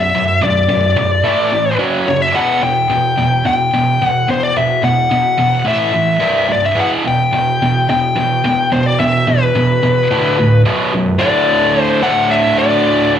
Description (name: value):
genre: metal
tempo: 108 BPM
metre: 4/4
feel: straight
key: unclear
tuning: A4 = 440 Hz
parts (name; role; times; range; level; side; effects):
- high-gain lead guitar; melody; 0.0-13.1 s; B4 to G5; -14 LUFS; left 4 dB; distortion, cassette tape, analog delay
- high-gain distorted guitar; riff; 0.0-13.2 s; B1 to A3; -15 LUFS; right 2 dB; distortion, cassette tape
room: light reverb, digital ambience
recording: home recording on cassette, studio reverb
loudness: -12 LUFS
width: side -9 dB against mid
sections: 0.0-11.2 A section; 11.2-13.2 B section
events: none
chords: 0.0 Bm; 1.2 A5; 1.8 F#5; 2.4 Em; 5.7 A5; 6.2 C5; 6.8 Em; 10.1 D5; 10.7 B5; 11.2 D5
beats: | 0.14 0.69 1.25 1.80 | 2.35 2.90 3.46 4.01 | 4.57 5.12 5.67 6.23 | 6.78 7.33 7.89 8.44 | 9.00 9.55 10.10 10.66 | 11.21 11.76 12.31 12.87